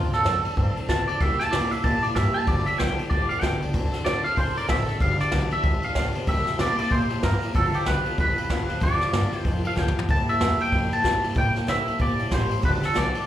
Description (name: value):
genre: rockabilly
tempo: 189 BPM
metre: 4/4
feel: swing 61% on 8ths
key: G mixolydian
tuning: A4 = 440 Hz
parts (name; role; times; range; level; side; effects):
- twangy electric guitar; melody; 0.0-13.3 s; F4 to A5; -25 LUFS; right 1 dB; lush chorus, slapback echo, analog delay
- picked steel-string acoustic guitar; accompaniment; 0.0-13.3 s; G2 to A4; -30 LUFS; left 1 dB; slapback echo
- upright bass; bass; 0.0-13.2 s; G1 to D3; -27 LUFS; equal; none
- jazz brush drum kit; drums; 0.1-13.2 s; kick drum, ride cymbal, snare drum, toms; -26 LUFS; equal; none
room: light reverb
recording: live gig heard through the venue's PA, club reverb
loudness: -21 LUFS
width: side -12 dB against mid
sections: 0.0-5.0 A section; 5.0-13.3 B section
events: clean electric guitar solo 0.0-5.0; drum fill 9.8-10.1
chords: 0.0 D7; 1.2 C7; 2.5 G7; 3.7 D7; 5.0 G7; 6.3 C7; 7.5 G7; 10.1 C7; 12.6 G7